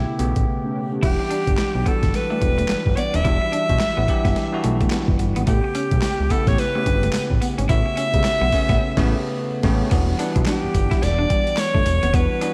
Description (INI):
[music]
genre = R&B, new jack swing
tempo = 108 BPM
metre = 4/4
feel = swing 60% on 16ths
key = E dorian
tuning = A4 = 440 Hz
[part]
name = bright alto saxophone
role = melody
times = 0.0-12.5 s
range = E4 to E5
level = -26 LUFS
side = equal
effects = none
[part]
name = bell-like tine electric piano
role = accompaniment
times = 0.0-12.5 s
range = B2 to F#5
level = -29 LUFS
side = equal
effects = none
[part]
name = fat analog bass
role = bass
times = 0.0-12.3 s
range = D#1 to C#2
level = -24 LUFS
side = equal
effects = none
[part]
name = boom bap sampler-style drum kit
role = drums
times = 0.2-12.5 s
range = crash cymbal, handclaps, hi-hat, kick drum, snare drum, tambourine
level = -25 LUFS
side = equal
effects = none
[part]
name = mellow synth brass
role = stabs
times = 0.6-1.1, 5.9-9.8 s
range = A3 to G4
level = -33 LUFS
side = equal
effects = chorus, slapback echo, analog delay
[part]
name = electric guitar at the edge of break-up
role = riff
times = 1.0-12.5 s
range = G3 to E4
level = -32 LUFS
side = equal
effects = subtle chorus
[sound]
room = moderate lush hall reverb, RT60 1.9 s, digital ambience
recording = big arena sound, vinyl crackle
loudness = -20 LUFS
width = mono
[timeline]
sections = 0.0-1.0 A section; 1.0-9.9 B section; 9.9-12.5 C section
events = break 0.5-1.0; band accent 8.8-9.9; drums muted 9.4-9.9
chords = 0.0 A9; 1.0 Em9; 5.5 A9; 9.9 Em9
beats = 0.47 | 1.03 1.58 2.14 2.69 | 3.25 3.81 4.36 4.92 | 5.47 6.03 6.58 7.14 | 7.69 8.25 8.80 9.36 | 9.92 10.47 11.03 11.58 | 12.14